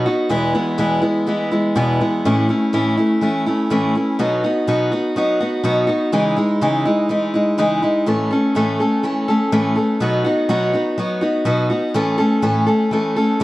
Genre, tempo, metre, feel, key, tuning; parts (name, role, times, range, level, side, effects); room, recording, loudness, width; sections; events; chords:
country; 124 BPM; 4/4; straight; A4 = 438 Hz
picked steel-string acoustic guitar; solo; 0.0-13.4 s; E2 to A4; -16 LUFS; equal
moderate spring reverb, RT60 2.9 s; dark, warm production; -16 LUFS; side -18 dB against mid
0.0-13.4 A section
0.3 E; 2.2 A; 4.2 B; 6.1 C#madd9; 8.1 A; 10.0 B; 12.0 A